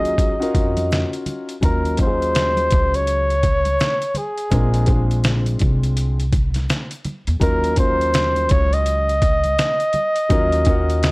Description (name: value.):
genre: hip hop, jazz-hop.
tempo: 83 BPM.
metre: 4/4.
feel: swing 63% on 16ths.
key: Eb dorian.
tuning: A4 = 440 Hz.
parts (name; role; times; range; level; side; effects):
mellow flugelhorn; melody; 0.0-11.1 s; Ab4 to Eb5; -20 LUFS; equal; none.
dark grand piano; accompaniment; 0.0-11.1 s; Gb3 to Bb4; -24 LUFS; left 2 dB; none.
upright bass; bass; 0.0-11.1 s; Bb1 to F2; -20 LUFS; equal; transformer saturation.
trip hop sampler-style drum kit; drums; 0.1-11.1 s; hi-hat, kick drum, snare drum; -20 LUFS; equal; none.
egg shaker and congas; percussion; 0.1-11.1 s; none; -32 LUFS; right 1 dB; none.
room: small room ambience.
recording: dry, gritty hardware recording.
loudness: -16 LUFS.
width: side -24 dB against mid.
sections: 0.0-1.6 A section; 1.6-11.1 B section.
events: none.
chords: 0.0 Ebm9; 4.5 Bb7; 7.4 Ebm9.